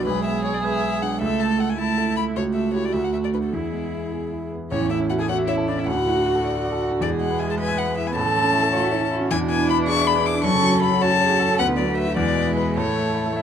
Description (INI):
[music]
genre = quick classical-period movement for piano quartet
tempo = 104 BPM (dotted quarters)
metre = 6/8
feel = straight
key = A major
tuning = A4 = 441 Hz
[part]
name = warm violin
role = melody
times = 0.0-13.4 s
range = G#4 to D6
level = -25 LUFS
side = left 7 dB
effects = none
[part]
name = dark cello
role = second line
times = 0.0-13.4 s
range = G#3 to B4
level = -26 LUFS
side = right 6 dB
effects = none
[part]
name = clear concert grand piano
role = accompaniment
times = 0.0-13.4 s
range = A1 to A5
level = -24 LUFS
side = left 1 dB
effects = none
[part]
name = rich viola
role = accompaniment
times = 0.0-13.4 s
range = G#3 to A4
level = -27 LUFS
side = right 2 dB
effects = none
[sound]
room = light reverb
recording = dark, warm production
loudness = -19 LUFS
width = side -8 dB against mid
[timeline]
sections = 0.0-4.7 A section; 4.7-13.4 B section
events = none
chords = 0.1 E7/B; 1.2 A/C#; 2.4 A7/C#; 2.9 D; 3.5 E; 4.7 A; 5.9 D; 7.0 E; 8.2 A; 9.3 E7; 10.4 F#m; 11.6 Bm/D; 12.2 E7; 12.8 A